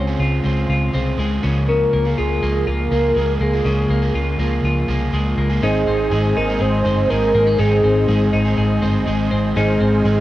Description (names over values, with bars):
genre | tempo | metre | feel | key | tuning
indie pop | 122 BPM | 4/4 | straight | Ab major | A4 = 442 Hz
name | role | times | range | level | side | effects
soft octave-layered synth lead | melody | 0.0-10.2 s | Ab4 to Db5 | -21 LUFS | equal | chorus, phaser, cassette tape, analog delay
overdriven electric guitar | accompaniment | 0.0-10.2 s | Db3 to Ab4 | -26 LUFS | right 6 dB | cassette tape
twelve-string electric guitar | arpeggios | 0.0-10.2 s | Ab2 to F4 | -20 LUFS | left 2 dB | cassette tape
vintage muted fingered electric bass | bass | 0.0-10.2 s | G1 to Db2 | -21 LUFS | equal | none
reed electric piano | accompaniment | 5.6-10.2 s | C4 to C5 | -28 LUFS | left 4 dB | none
musette accordion | sustained chords | 5.6-10.2 s | C5 to F6 | -28 LUFS | right 4 dB | cassette tape
room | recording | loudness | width
light reverb | home recording on cassette | -15 LUFS | side -15 dB against mid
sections
0.0-5.6 A section; 5.6-10.2 B section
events
none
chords
0.0 Dbmaj7; 5.6 Ab